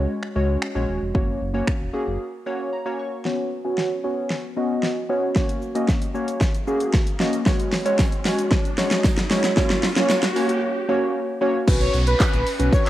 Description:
dance-pop; 114 BPM; 4/4; straight; F# major; A4 = 440 Hz
glassy digital keys; accompaniment; 0.0-12.8 s; G#3 to C#6; -23 LUFS; equal; chorus, sidechain pumping, low-pass filter
sub bass with octave; bass; 0.0-2.2, 11.7-12.7 s; D#1 to C#2; -24 LUFS; equal; sidechain pumping
pop drum kit; drums; 0.2-12.9 s; crash cymbal, finger snaps, handclaps, hi-hat, kick drum, shaker, snare drum; -21 LUFS; equal; cassette tape
riser and downlifter; sound effects; 5.2-12.9 s; -32 LUFS; right 1 dB
tambourine; percussion; 7.5-12.8 s; -42 LUFS; right 6 dB
soft supersaw; melody; 11.8-12.9 s; B4 to C#5; -24 LUFS; equal; sidechain pumping, cassette tape, analog delay
light reverb; home recording on cassette; -20 LUFS; side -14 dB against mid
0.0-3.3 A section; 3.3-11.7 B section; 11.7-12.9 C section
break 2.2-3.3, 10.6-11.7; synth keys fill 2.2-3.3; build-up 3.3-11.7; drum fill 3.3-10.6; filter sweep on synth keys 3.3-11.7; riser 5.2-11.7; drop 11.7-12.9
0.0 C#sus4; 1.1 F#; 3.3 Bsus2; 5.4 F#; 7.5 C#sus4; 9.6 F#; 11.7 Bsus2

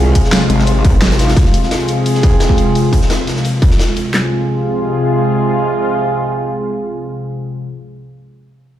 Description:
dark technical drum and bass; 173 BPM; 4/4; straight; F minor; A4 = 440 Hz
sweeping resonant pad; sustained chords; 0.0-7.7 s; C3 to F4; -17 LUFS; left 1 dB; chorus, sidechain pumping
dark brass ensemble; stabs; 0.0-7.7 s; C4 to Ab4; -20 LUFS; right 4 dB; low-pass filter, ping-pong delay
growl bass; bass; 0.0-1.4 s; Ab1 to C2; -13 LUFS; equal; chorus
raw garage drum kit; drums; 0.1-4.0 s; hi-hat, snare drum; -23 LUFS; left 1 dB; high-pass filter on hats, small room ambience, high-pass filter on snare, high-pass filter on room
dubstep drum kit; drums; 0.2-4.2 s; handclaps, kick drum, snare drum; -13 LUFS; equal; distortion, small room ambience
dubstep drum kit; drums; 0.2-4.0 s; hi-hat, snare drum; -19 LUFS; right 1 dB; low-pass filter on hats, small room ambience, low-pass filter on snare
moderate lush hall reverb, RT60 2.2 s; played on a big sound system in a bare room, stone room reverb; -12 LUFS; side -12 dB against mid
0.0-4.1 A section; 4.1-6.9 B section
filter sweep on drum 0.0-4.1
0.0 Fm

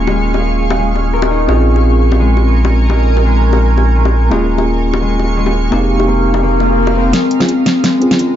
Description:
liquid drum and bass; 170 BPM; 4/4; swing 53% on 16ths; Bb dorian; A4 = 436 Hz
tine electric piano; accompaniment; 0.0-8.4 s; Bb3 to Ab4; -18 LUFS; right 1 dB; medium tremolo, low-pass filter, dub echo
shimmering ambient pad; sustained chords; 0.0-8.4 s; Ab4 to Eb6; -20 LUFS; right 2 dB; chorus, built-in reverb, phaser
concert harp; arpeggios; 0.0-8.4 s; Ab3 to Bb4; -17 LUFS; left 3 dB; low-pass filter, dub echo
sub bass with octave; bass; 0.0-7.1 s; Eb1 to Bb1; -13 LUFS; equal
bongos; percussion; 0.1-6.9 s; -21 LUFS; left 5 dB
swell; sound effects; 6.6-7.1 s; -21 LUFS; left 1 dB
pop drum kit; drums; 7.1-8.3 s; hi-hat, snare drum; -15 LUFS; right 1 dB
light reverb; dark, warm production, nothing above 7.6 kHz; -10 LUFS; side -10 dB against mid
0.0-7.1 A section; 7.1-8.4 B section
swell 6.6-7.1; build-up 7.1-8.4; drum fill 7.1-8.4; filter sweep on tine electric piano 7.1-8.4
0.0 Eb9sus4; 1.5 Bbm7; 4.3 Eb9sus4; 5.7 F7sus4; 7.1 Bbm7

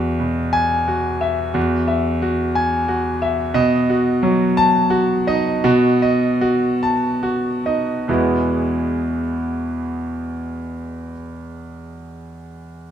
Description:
neoclassical minimalist piano; 46-60 BPM (dotted quarters); 6/8; rubato; E major; A4 = 440 Hz
clear concert grand piano; solo; 0.0-12.9 s; E2 to A5; -17 LUFS; equal
moderate recital hall reverb, RT60 1.7 s; minimal, uncompressed stereo recording; -16 LUFS; side -9 dB against mid
0.0-8.1 A section; 8.1-12.9 B section
slowing down 2.6-8.1
0.0 Eadd9; 3.6 B7; 8.1 Eadd9

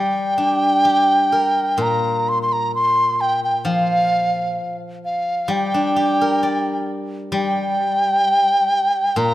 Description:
chinese traditional, Chinese chamber ensemble; 65 BPM; 4/4; straight; G yu mode; A4 = 440 Hz
mellow large dizi; melody; 0.0-9.3 s; F5 to C6; -17 LUFS; equal
steel-string zither; accompaniment; 0.0-9.3 s; Bb2 to D5; -22 LUFS; left 1 dB
moderate scoring stage reverb, RT60 1.5 s; close, detailed microphones; -16 LUFS; side -14 dB against mid
0.0-9.3 A section

